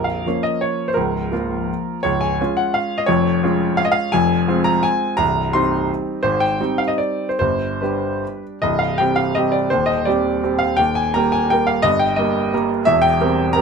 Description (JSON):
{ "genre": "classical, romantic triple-time dance for piano with dotted rhythms", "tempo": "138-183 BPM", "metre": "3/4", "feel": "rubato", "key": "C minor from 4.1 s", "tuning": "A4 = 440 Hz", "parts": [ { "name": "clear baby grand piano", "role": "solo", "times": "0.0-13.6 s", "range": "Bb0 to C6", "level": "-16 LUFS", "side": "equal", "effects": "none" } ], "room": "light reverb", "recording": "minimal, uncompressed stereo recording", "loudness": "-16 LUFS", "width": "side -5 dB against mid", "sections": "0.0-8.6 A section; 8.6-13.6 B section", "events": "none", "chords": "0.0 Bbm; 1.0 Bbm/Db; 2.0 Db; 3.1 Db/F; 4.1 Fm; 5.2 Cm; 6.2 Abmaj7; 7.4 G; 8.6 C5; 9.7 Cm/Eb; 10.8 Eb; 11.8 Eb/G; 12.9 C7/E" }